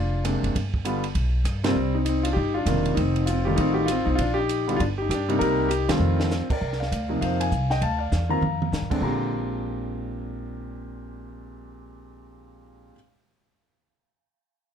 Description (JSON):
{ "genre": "jazz piano trio", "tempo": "198 BPM", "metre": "4/4", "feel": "swing 62% on 8ths", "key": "Bb mixolydian", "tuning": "A4 = 440 Hz", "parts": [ { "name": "warm concert grand piano", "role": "melody", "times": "0.0-13.0 s", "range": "Bb2 to Bb5", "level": "-25 LUFS", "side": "left 1 dB", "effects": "plate reverb" }, { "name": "upright bass", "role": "bass", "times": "0.0-12.9 s", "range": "E1 to C3", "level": "-27 LUFS", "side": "equal", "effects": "none" }, { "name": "compact cocktail drum kit", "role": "drums", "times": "0.2-9.0 s", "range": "crash cymbal, hi-hat, kick drum, ride cymbal, rim click, snare drum, toms", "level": "-32 LUFS", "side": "right 2 dB", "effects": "none" } ], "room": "light reverb", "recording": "dark, warm production", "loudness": "-22 LUFS", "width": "side -8 dB against mid", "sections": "0.0-6.6 A section; 6.6-9.0 B section; 9.0-11.4 C section", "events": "band accent 1.6, 5.8; drum fill 6.0-6.3, 8.1-8.7", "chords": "0.0 Bb9; 0.5 G7; 1.8 Cm7; 3.0 F9; 4.2 Bb; 4.8 G5; 5.4 Cm7; 6.0 F9; 6.6 C7sus2; 7.2 F7sus4; 7.8 Dm; 8.4 F7sus4; 9.0 Bb13" }